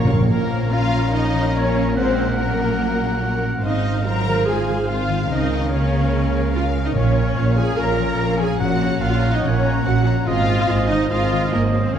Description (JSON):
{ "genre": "cinematic", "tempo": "144 BPM", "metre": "4/4", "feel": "straight", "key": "Bb minor", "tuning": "A4 = 439 Hz", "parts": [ { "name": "silver concert flute", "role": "second line", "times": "0.0-12.0 s", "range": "Bb4 to Bb5", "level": "-32 LUFS", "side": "left 2 dB", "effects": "none" }, { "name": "warm clarinet", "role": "second line", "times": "0.0-12.0 s", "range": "Bb4 to Db5", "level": "-32 LUFS", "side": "equal", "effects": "none" }, { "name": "warm oboe", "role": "second line", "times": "0.0-12.0 s", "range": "Eb5 to Bb5", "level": "-29 LUFS", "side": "right 2 dB", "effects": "none" }, { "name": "warm symphonic violin section", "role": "second line", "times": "0.0-12.0 s", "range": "Ab4 to Db6", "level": "-32 LUFS", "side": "left 1 dB", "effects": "none" }, { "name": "warm symphonic viola section", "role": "accompaniment", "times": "0.0-12.0 s", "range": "Bb3 to Bb4", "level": "-24 LUFS", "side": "right 2 dB", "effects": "none" }, { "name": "concert harp", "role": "arpeggios", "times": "0.0-12.0 s", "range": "Ab2 to Bb5", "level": "-27 LUFS", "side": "left 9 dB", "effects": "none" }, { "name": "rich symphonic double bass section", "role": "bass", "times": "0.0-12.0 s", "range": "Ab1 to Db2", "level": "-23 LUFS", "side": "right 3 dB", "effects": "none" }, { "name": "warm symphonic cello section", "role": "bass", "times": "0.0-12.0 s", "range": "Ab2 to Db3", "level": "-25 LUFS", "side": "right 2 dB", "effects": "none" }, { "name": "timpani", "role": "percussion", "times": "0.0-0.9, 7.0-9.2 s", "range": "Bb2", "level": "-22 LUFS", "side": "right 1 dB", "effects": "none" }, { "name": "rich studio violin section", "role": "melody", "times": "0.3-12.0 s", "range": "Bb4 to Bb5", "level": "-29 LUFS", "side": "left 5 dB", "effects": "none" }, { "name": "mellow French horn section", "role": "sustained chords", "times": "0.3-12.0 s", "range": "F3 to F4", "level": "-29 LUFS", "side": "left 4 dB", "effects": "none" } ], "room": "moderate scoring stage reverb, RT60 1.7 s", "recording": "dark, warm production", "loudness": "-17 LUFS", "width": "side -8 dB against mid", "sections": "0.3-12.0 A section", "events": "timpani fill 0.0", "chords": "0.3 Bbm; 2.0 Gb/Bb; 3.6 Ab6; 5.3 Db6; 7.0 Bbm; 8.6 Gb/Bb; 10.3 Ab6", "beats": "| 0.30 0.72 1.14 1.56 | 1.98 2.40 2.81 3.23 | 3.64 4.06 4.48 4.89 | 5.30 5.72 6.13 6.54 | 6.95 7.36 7.78 8.19 | 8.60 9.01 9.43 9.85 | 10.27 10.69 11.11 11.53 | 11.95" }